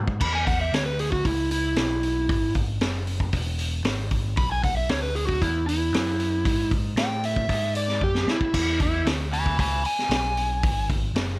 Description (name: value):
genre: blues rock power trio and southern rock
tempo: 115 BPM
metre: 4/4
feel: straight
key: E mixolydian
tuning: A4 = 438 Hz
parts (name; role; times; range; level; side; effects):
- overdriven picked electric bass; bass; 0.0-11.4 s; E1 to A2; -27 LUFS; equal; none
- vintage drum kit; drums; 0.1-11.3 s; crash cymbal, hi-hat, kick drum, snare drum; -26 LUFS; equal; none
- overdriven slide guitar; melody; 0.2-10.9 s; E4 to B5; -25 LUFS; equal; none
room: light reverb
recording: none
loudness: -22 LUFS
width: side -24 dB against mid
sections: 0.0-11.4 A section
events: drum fill 0.0, 8.0-8.5; electric slide guitar solo 0.0-11.4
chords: 0.0 E